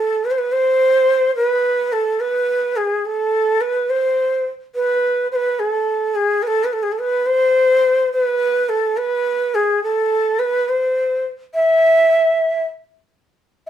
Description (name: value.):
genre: persian.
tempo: 71 BPM (dotted quarters).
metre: 6/8.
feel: straight.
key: unclear.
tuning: A4 = 438 Hz.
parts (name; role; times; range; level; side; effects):
breathy bright ney; solo; 0.0-13.7 s; G#4 to E5; -15 LUFS; equal; none.
room: light reverb.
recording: band playing live in one room.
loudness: -15 LUFS.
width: side -10 dB against mid.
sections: 0.0-13.2 A section.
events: none.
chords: none.